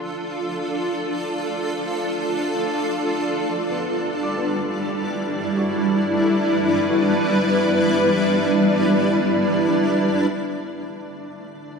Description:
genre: ambient.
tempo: free time.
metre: none.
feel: none.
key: D major.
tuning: A4 = 442 Hz.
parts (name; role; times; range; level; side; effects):
granular cloud pad; sustained chords; 0.0-11.8 s; G3 to D5; -19 LUFS; equal; built-in reverb.
felt-muted upright piano; arpeggios; 0.0-10.5 s; A3 to D6; -34 LUFS; left 2 dB; none.
analog drone; drone; 10.8-11.8 s; D3 to D4; -49 LUFS; left 1 dB; lush chorus.
room: wet lush hall reverb, RT60 2.8 s.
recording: dreamy mix soaked in reverb.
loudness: -18 LUFS.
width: side -5 dB against mid.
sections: 0.0-10.3 A section; 10.3-11.8 B section.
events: none.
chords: 0.0 Dm; 3.3 Em7; 10.3 D7.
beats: free time.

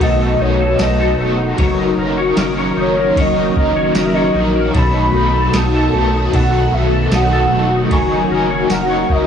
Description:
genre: dream pop.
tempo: 76 BPM.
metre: 4/4.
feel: straight.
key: unclear.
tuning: A4 = 440 Hz.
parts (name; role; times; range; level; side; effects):
warbly nostalgic lead; melody; 0.0-9.3 s; C#5 to B5; -19 LUFS; right 1 dB; chorus, tremolo, tape echo.
overdriven electric guitar; accompaniment; 0.0-9.3 s; B2 to A#4; -22 LUFS; right 2 dB; tremolo, ensemble chorus.
phased string machine; sustained chords; 0.0-9.3 s; D#3 to F#4; -18 LUFS; left 2 dB; ensemble chorus, phaser.
clean electric guitar; arpeggios; 0.0-9.3 s; B2 to C#5; -19 LUFS; left 2 dB; ensemble chorus, tape echo.
round analog bass; bass; 0.0-9.3 s; E1 to B1; -21 LUFS; equal; tube saturation.
soft vintage rhythm box; drums; 0.0-9.3 s; kick drum, ride cymbal, snare drum, tambourine; -19 LUFS; equal; none.
worn celesta; texture; 0.0-0.5, 7.9-9.3 s; C#6; -32 LUFS; left 1 dB; none.
room: light reverb.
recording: dry, gritty hardware recording, small room ambience.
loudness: -12 LUFS.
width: side -8 dB against mid.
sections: 0.0-9.3 A section.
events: none.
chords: 0.0 B7; 1.6 F#6; 4.7 B7; 7.9 F#6.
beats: 0.01 0.80 | 1.59 2.38 3.17 3.96 | 4.75 5.54 6.32 7.11 | 7.90 8.69.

